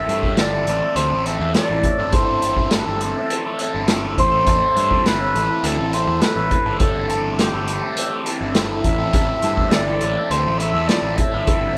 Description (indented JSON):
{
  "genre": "psychedelic rock",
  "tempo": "103 BPM",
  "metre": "4/4",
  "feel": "straight",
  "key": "A minor",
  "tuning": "A4 = 440 Hz",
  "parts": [
    { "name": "reedy silver concert flute", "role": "melody", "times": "0.0-11.8 s", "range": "G4 to E5", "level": "-24 LUFS", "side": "equal", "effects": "none" },
    { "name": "overdriven combo organ", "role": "sustained chords", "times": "0.0-11.8 s", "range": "E3 to B5", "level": "-35 LUFS", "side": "equal", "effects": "none" },
    { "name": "overdriven electric guitar", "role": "riff", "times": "0.0-11.8 s", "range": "A2 to A4", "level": "-26 LUFS", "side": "equal", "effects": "phaser" },
    { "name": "fuzz picked electric bass", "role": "bass", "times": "0.1-11.8 s", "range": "G1 to G2", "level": "-27 LUFS", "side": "equal", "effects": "overdrive" },
    { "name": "vintage drum kit", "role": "drums", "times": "0.1-11.6 s", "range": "hi-hat, kick drum, snare drum", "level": "-24 LUFS", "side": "equal", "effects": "none" }
  ],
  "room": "moderate studio reverb, RT60 0.7 s",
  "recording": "band playing live in one room",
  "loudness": "-19 LUFS",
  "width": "mono",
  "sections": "0.0-11.8 A section",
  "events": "none",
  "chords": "0.0 Am"
}